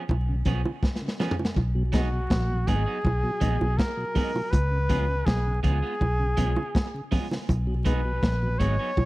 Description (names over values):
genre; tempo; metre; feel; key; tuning
roots reggae; 81 BPM; 4/4; straight; B lydian; A4 = 439 Hz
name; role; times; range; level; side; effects
electric guitar at the edge of break-up; accompaniment; 0.0-8.9 s; E#3 to G#4; -35 LUFS; right 5 dB; spring reverb, dub echo
vintage muted fingered electric bass; bass; 0.1-9.1 s; G#1 to C#2; -26 LUFS; equal; none
crunchy breakbeat drum kit; drums; 0.1-9.1 s; hi-hat, kick drum, snare drum, toms; -26 LUFS; equal; none
bongos; percussion; 0.1-9.1 s; none; -30 LUFS; right 3 dB; none
mellow tonewheel organ; accompaniment; 0.3-8.7 s; B2 to D#4; -33 LUFS; left 1 dB; slow rotary speaker, slapback echo
clear flugelhorn; melody; 1.9-9.1 s; F#4 to C#5; -30 LUFS; equal; dub echo
room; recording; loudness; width
little or no reverb; dry, close 1970s-style studio recording, vinyl crackle; -23 LUFS; side -19 dB against mid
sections
0.0-9.1 A section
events
drum fill 0.8-1.6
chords
0.0 C#7; 1.6 B6; 4.5 C#7; 7.5 B6